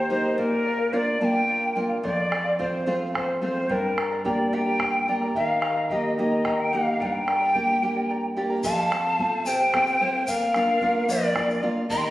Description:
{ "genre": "andean folk, Andean ensemble", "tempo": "73 BPM (dotted quarters)", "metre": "6/8", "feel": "straight", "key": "unclear", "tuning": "A4 = 440 Hz", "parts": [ { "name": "quena", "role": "melody", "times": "0.0-12.1 s", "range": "Bb4 to C6", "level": "-24 LUFS", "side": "left 1 dB", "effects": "none" }, { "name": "charango", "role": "accompaniment", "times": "0.0-12.1 s", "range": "G4 to Bb5", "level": "-32 LUFS", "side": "right 1 dB", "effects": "none" }, { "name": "nylon-string guitar", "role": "accompaniment", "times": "0.0-12.1 s", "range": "F2 to G4", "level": "-27 LUFS", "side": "equal", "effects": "none" }, { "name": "bombo", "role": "percussion", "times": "2.0-12.1 s", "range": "none", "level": "-33 LUFS", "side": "right 2 dB", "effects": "none" }, { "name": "breathy pan flute", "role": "second line", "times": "8.6-12.1 s", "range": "Bb4 to G5", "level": "-29 LUFS", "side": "equal", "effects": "none" }, { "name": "egg shaker", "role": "percussion", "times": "8.6-12.0 s", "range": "none", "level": "-38 LUFS", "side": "left 2 dB", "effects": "none" } ], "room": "wet recital hall reverb, RT60 1.3 s", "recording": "recorded on a phone in the room, studio reverb", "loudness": "-21 LUFS", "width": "side -15 dB against mid", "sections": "0.0-8.6 A section; 8.6-12.1 B section", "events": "break 7.8-8.6", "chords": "0.4 Bb; 2.0 F; 3.7 Gm; 5.4 Eb; 7.0 Gm; 8.6 F; 10.3 Bb", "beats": "| 0.38 1.21 | 2.04 2.87 | 3.70 4.53 | 5.35 6.18 | 7.00 7.82 | 8.64 9.46 | 10.28 11.09 | 11.91" }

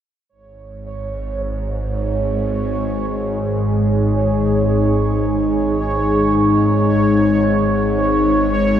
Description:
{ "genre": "dark ambient drone", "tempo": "free time", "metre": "none", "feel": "none", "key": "unclear", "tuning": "A4 = 440 Hz", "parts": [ { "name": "deep dark ambient pad", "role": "sustained chords", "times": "1.9-8.8 s", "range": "G#3 to G#4", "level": "-19 LUFS", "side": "left 2 dB", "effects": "chorus, built-in reverb" }, { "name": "bowed-like drone", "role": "drone", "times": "0.8-8.8 s", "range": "G#1 to G#2", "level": "-19 LUFS", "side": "equal", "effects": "built-in reverb, phaser" }, { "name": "bubbling stepped-filter texture", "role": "texture", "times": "0.3-8.8 s", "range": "C#5", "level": "-22 LUFS", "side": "right 3 dB", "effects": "chorus, built-in reverb" } ], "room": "wet cathedral reverb, RT60 5.7 s", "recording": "none", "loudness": "-15 LUFS", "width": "side -10 dB against mid", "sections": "0.3-8.8 A section", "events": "none", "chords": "0.3 G#5", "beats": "free time" }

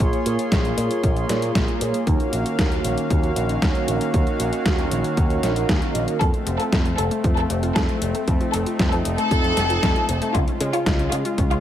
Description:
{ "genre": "italo disco", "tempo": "116 BPM", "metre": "4/4", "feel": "straight", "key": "unclear", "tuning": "A4 = 436 Hz", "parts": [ { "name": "warm analog pad", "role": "sustained chords", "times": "0.0-11.6 s", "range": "Db3 to C6", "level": "-25 LUFS", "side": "equal", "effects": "chorus" }, { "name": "mellow synth brass", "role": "stabs", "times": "0.0-6.2 s", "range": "Eb3 to Eb5", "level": "-28 LUFS", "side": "right 4 dB", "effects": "chorus, digital delay" }, { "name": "picked electric bass with an envelope filter", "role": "bass", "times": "0.0-11.6 s", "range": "F1 to Db3", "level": "-26 LUFS", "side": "equal", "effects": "none" }, { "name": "detuned 8-bit digital drum machine", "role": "drums", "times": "0.0-11.6 s", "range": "hi-hat, snare drum", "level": "-26 LUFS", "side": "equal", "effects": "overdrive, gated reverb" }, { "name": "electronic kick drum", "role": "drums", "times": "0.0-11.5 s", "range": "none", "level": "-22 LUFS", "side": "equal", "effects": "none" }, { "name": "rich symphonic violin section", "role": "melody", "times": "6.2-11.6 s", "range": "F4 to A4", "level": "-25 LUFS", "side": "left 1 dB", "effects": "tape echo" }, { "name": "wide unison pluck", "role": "arpeggios", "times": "6.2-11.6 s", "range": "C3 to Db5", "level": "-30 LUFS", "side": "left 3 dB", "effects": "digital delay" } ], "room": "light reverb", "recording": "none", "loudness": "-19 LUFS", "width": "side -11 dB against mid", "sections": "0.0-11.6 A section", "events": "none", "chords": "0.0 Bbm7; 2.1 Ebm7; 6.2 F; 10.3 Db", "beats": "| 0.00 0.52 1.03 1.55 | 2.07 2.59 3.10 3.62 | 4.14 4.66 5.17 5.69 | 6.21 6.72 7.24 7.76 | 8.28 8.79 9.31 9.83 | 10.35 10.86 11.38" }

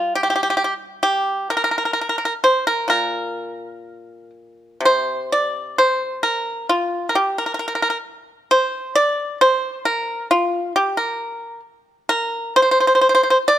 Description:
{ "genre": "chinese traditional, Chinese solo plucked strings", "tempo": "66 BPM", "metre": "4/4", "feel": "rubato", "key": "unclear", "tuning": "A4 = 440 Hz", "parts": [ { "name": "pipa", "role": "solo", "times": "0.0-13.6 s", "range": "Bb2 to D5", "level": "-17 LUFS", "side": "equal", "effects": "none" } ], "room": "light reverb", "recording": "close, detailed microphones", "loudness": "-17 LUFS", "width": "side -11 dB against mid", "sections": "0.0-13.6 A section", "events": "none", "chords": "none", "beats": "0.18 | 1.07 1.98 2.90 3.85 | 4.83 5.78 6.70 7.61 | 8.51 9.41 10.30 11.19 | 12.10 13.02" }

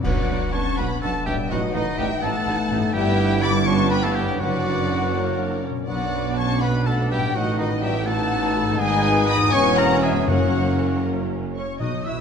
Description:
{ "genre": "classical, dramatic, fast romantic movement for symphony orchestra", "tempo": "82 BPM (dotted quarters)", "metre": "6/8", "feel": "straight", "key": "B minor", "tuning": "A4 = 436 Hz", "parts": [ { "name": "warm symphonic violin section", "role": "melody", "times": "0.0-12.2 s", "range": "D#5 to E6", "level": "-28 LUFS", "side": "left 4 dB", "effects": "none" }, { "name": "bright concert flute", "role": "second line", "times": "0.0-12.2 s", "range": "C#5 to D#6", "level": "-31 LUFS", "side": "left 1 dB", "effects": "none" }, { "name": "warm oboe", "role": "second line", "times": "0.0-12.2 s", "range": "D#4 to D#5", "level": "-30 LUFS", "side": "right 1 dB", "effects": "none" }, { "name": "warm symphonic violin section", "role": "second line", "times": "0.0-12.2 s", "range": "B4 to B5", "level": "-31 LUFS", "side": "left 3 dB", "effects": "none" }, { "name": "warm bassoon", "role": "accompaniment", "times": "0.0-12.2 s", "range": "F#3 to B3", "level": "-32 LUFS", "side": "right 3 dB", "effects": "none" }, { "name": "warm symphonic viola section", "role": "accompaniment", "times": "0.0-12.2 s", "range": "B3 to D5", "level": "-32 LUFS", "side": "right 1 dB", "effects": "none" }, { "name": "mellow French horn section", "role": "sustained chords", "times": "0.0-11.0 s", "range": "D#3 to D#4", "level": "-29 LUFS", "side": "left 4 dB", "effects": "none" }, { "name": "concert harp", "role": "arpeggios", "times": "0.0-12.2 s", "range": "E2 to E5", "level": "-29 LUFS", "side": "left 8 dB", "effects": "none" }, { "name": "rich studio double bass section", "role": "bass", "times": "0.0-12.2 s", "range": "E1 to B1", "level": "-29 LUFS", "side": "right 5 dB", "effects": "none" }, { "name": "warm symphonic cello section", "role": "bass", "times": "0.0-12.2 s", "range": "E2 to B2", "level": "-28 LUFS", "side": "right 5 dB", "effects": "none" }, { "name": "warm tuba", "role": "bass", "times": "0.0-12.2 s", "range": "E1 to B1", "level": "-30 LUFS", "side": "right 4 dB", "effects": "none" }, { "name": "clash cymbals and concert bass drum", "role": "percussion", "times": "0.0-1.0 s", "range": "none", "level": "-29 LUFS", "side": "equal", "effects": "none" }, { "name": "dark clarinet", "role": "second line", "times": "0.1-12.2 s", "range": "A#3 to F4", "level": "-30 LUFS", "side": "left 3 dB", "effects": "none" }, { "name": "timpani", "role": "percussion", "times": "10.3-12.2 s", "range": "F#2 to B2", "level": "-28 LUFS", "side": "left 2 dB", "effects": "none" }, { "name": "warm trumpet section", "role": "stabs", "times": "11.6-12.2 s", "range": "C#5 to E5", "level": "-32 LUFS", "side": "right 1 dB", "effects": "none" } ], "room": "wet concert hall reverb, RT60 1.7 s", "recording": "dark, warm production", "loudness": "-19 LUFS", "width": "side -7 dB against mid", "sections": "0.0-11.8 A section", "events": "band accent 0.0-0.5", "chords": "0.0 Bm; 1.5 B7/A; 2.9 Em/G; 3.7 G7; 4.4 Bm/F#; 5.1 F#; 5.9 Bm; 7.3 B7/A; 8.8 G#m; 9.5 C#m7/E; 10.3 F#", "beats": "| 0.04 0.78 | 1.50 2.22 | 2.94 3.66 | 4.40 5.14 | 5.88 6.62 | 7.35 8.07 | 8.79 9.53 | 10.28 11.05 | 11.81" }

